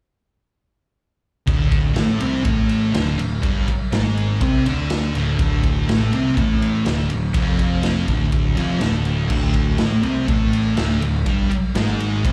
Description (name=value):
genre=garage rock duo or trio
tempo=123 BPM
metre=4/4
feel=straight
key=unclear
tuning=A4 = 440 Hz
part: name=thick fuzz guitar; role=riff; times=1.5-12.3 s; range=D2 to D4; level=-23 LUFS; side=equal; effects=distortion, slapback echo
part: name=fuzz picked electric bass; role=bass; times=1.5-12.3 s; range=D1 to D2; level=-25 LUFS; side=equal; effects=overdrive
part: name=raw garage drum kit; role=drums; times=1.5-12.3 s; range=crash cymbal, kick drum, ride cymbal, snare drum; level=-24 LUFS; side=equal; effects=none
room=light reverb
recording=live gig heard through the venue's PA, club reverb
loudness=-19 LUFS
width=mono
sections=1.5-12.3 A section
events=none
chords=1.5 D5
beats=| 1.47 1.96 2.46 2.94 | 3.44 3.93 4.42 4.91 | 5.39 5.88 6.37 6.86 | 7.35 7.84 8.33 8.82 | 9.31 9.80 10.29 10.78 | 11.27 11.76 12.24